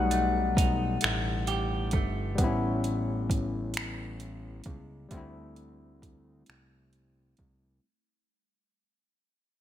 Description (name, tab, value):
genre	slow six-eight R&B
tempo	44 BPM (dotted quarters)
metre	6/8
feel	straight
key	unclear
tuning	A4 = 440 Hz
part	semi-hollow electric guitar	second line	0.0-3.0 s	B2 to A4	-36 LUFS	right 6 dB	none
part	barky tine electric piano	accompaniment	0.0-7.9 s	G3 to F#5	-31 LUFS	left 4 dB	overdrive
part	fat analog bass	bass	0.0-7.8 s	G1 to D2	-33 LUFS	right 1 dB	none
part	smooth R&B drum kit	drums	0.1-7.6 s	finger snaps, hi-hat, kick drum	-30 LUFS	right 1 dB	gated reverb
room	moderate plate reverb, RT60 3.4 s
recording	bright 1980s-style digital production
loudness	-26 LUFS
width	side -11 dB against mid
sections	0.0-7.8 A section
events	fade-out 0.0-7.8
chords	0.0 B7b13; 2.4 A9; 5.1 D9sus4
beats	1.02 | 2.38 3.75 | 5.11 6.47